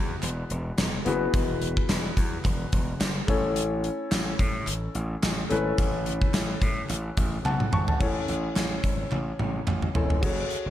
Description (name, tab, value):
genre	1980s-style pop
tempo	108 BPM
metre	4/4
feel	swing 55% on 16ths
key	unclear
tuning	A4 = 440 Hz
part	warm grand piano	accompaniment	0.0-10.7 s	A3 to C#6	-30 LUFS	left 3 dB	none
part	gritty slap bass	bass	0.0-10.7 s	E1 to A2	-31 LUFS	equal	overdrive
part	gated 80s drum kit	drums	0.2-10.6 s	crash cymbal, hi-hat, kick drum, snare drum, tambourine, toms	-26 LUFS	equal	none
part	group handclap	percussion	0.2-9.8 s	none	-45 LUFS	right 5 dB	none
room	light reverb, small room reverb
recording	dark, warm production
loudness	-24 LUFS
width	side -12 dB against mid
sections	0.0-8.0 A section; 8.0-10.2 B section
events	drum fill 7.5-8.0, 9.1-10.2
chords	0.0 Eadd9; 3.3 A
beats	0.23 0.78 | 1.34 1.89 2.45 3.00 | 3.56 4.12 4.67 5.23 | 5.78 6.34 6.89 7.45 | 8.01 8.56 9.12 9.67 | 10.23